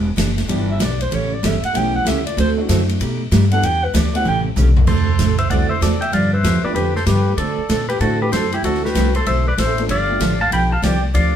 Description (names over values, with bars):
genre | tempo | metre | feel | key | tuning
country, western swing | 192 BPM | 4/4 | swing 63% on 8ths | D mixolydian | A4 = 440 Hz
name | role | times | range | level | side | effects
picked steel-string acoustic guitar | accompaniment | 0.0-11.4 s | B2 to A4 | -23 LUFS | right 4 dB | none
upright bass | bass | 0.0-11.4 s | E1 to D3 | -19 LUFS | left 1 dB | none
swinging big-band drum kit | drums | 0.2-11.2 s | crash cymbal, hi-hat, kick drum, ride cymbal, snare drum, toms | -23 LUFS | right 2 dB | none
warm upright piano | accompaniment | 0.5-10.2 s | G3 to A4 | -26 LUFS | left 2 dB | none
warm clarinet | second line | 0.7-11.4 s | E4 to G5 | -24 LUFS | right 1 dB | none
pedal steel guitar | melody | 4.9-11.4 s | E4 to B5 | -22 LUFS | left 1 dB | none
room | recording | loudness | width
moderate studio ambience, RT60 0.4 s | band playing live in one room | -15 LUFS | side -9 dB against mid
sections
0.0-4.9 A section; 4.9-11.4 B section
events
clarinet solo 0.0-4.9; drum fill 4.3-4.9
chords
0.0 Em7; 1.1 A9; 2.4 D9; 3.0 B7alt; 3.6 Em7; 4.3 A9; 4.9 D9; 6.1 G7; 7.4 D9; 9.9 G9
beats
0.18 0.49 0.81 | 1.12 1.43 1.75 2.06 | 2.37 2.69 3.00 3.31 | 3.63 3.94 4.25 4.57 | 4.88 5.19 5.51 5.82 | 6.13 6.45 6.76 7.07 | 7.39 7.70 8.01 8.33 | 8.64 8.95 9.27 9.58 | 9.89 10.20 10.52 10.83 | 11.14